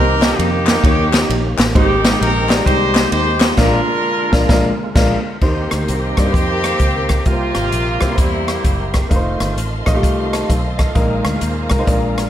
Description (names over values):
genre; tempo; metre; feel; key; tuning
uptempo gospel; 130 BPM; 4/4; swing 64% on 8ths; Eb major; A4 = 439 Hz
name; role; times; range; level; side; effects
clear horn section; melody; 0.0-9.1 s; G3 to C5; -18 LUFS; equal; none
clear baby grand piano; accompaniment; 0.0-12.3 s; Ab2 to A5; -21 LUFS; left 1 dB; none
overdriven tonewheel organ; sustained chords; 0.0-12.3 s; D3 to C5; -26 LUFS; right 2 dB; slow rotary speaker, chorus vibrato
fingered electric bass; bass; 0.0-12.3 s; F1 to G2; -20 LUFS; equal; none
swinging big-band drum kit; drums; 0.2-12.3 s; crash cymbal, hi-hat, kick drum, ride cymbal, rim click, snare drum; -17 LUFS; equal; none
group handclap; percussion; 0.2-3.5 s; none; -24 LUFS; left 7 dB; none
warm studio string section; sustained chords; 5.4-12.3 s; D5 to C6; -30 LUFS; equal; none
room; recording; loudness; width
light reverb; none; -13 LUFS; side -11 dB against mid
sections
0.0-5.4 A section; 5.4-12.3 B section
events
band accent 3.6-5.4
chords
0.0 Cm7; 0.8 Eb7; 1.8 Abmaj7; 3.6 Bb7; 5.4 Eb6; 7.3 C7; 9.1 F7; 11.0 Bb7sus4